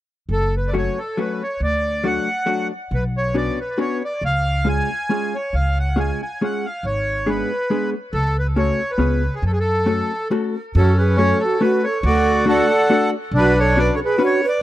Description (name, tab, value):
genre	musette waltz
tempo	138 BPM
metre	3/4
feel	swing 54% on 8ths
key	F# harmonic minor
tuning	A4 = 441 Hz
part	accordion	melody	0.3-14.6 s	C#4 to G#5	-21 LUFS	equal	tape echo
part	upright bass	bass	0.3-13.9 s	F#1 to F#2	-20 LUFS	equal	none
part	hollow-body jazz guitar	accompaniment	0.7-14.4 s	F#3 to B4	-21 LUFS	left 2 dB	none
part	breathy bright long shakuhachi	second line	10.8-14.6 s	F#4 to D5	-21 LUFS	right 5 dB	none
room	light reverb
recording	dry, close 1970s-style studio recording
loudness	-17 LUFS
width	side -14 dB against mid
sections	0.3-10.7 A section; 10.7-14.6 A section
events	break 10.3-10.7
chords	0.3 F#m; 1.6 D; 2.9 Bmadd9; 4.2 C#; 6.8 G#dim; 8.1 F#m/C#; 9.0 C#7; 9.4 F#m; 12.0 D; 13.3 Bmadd9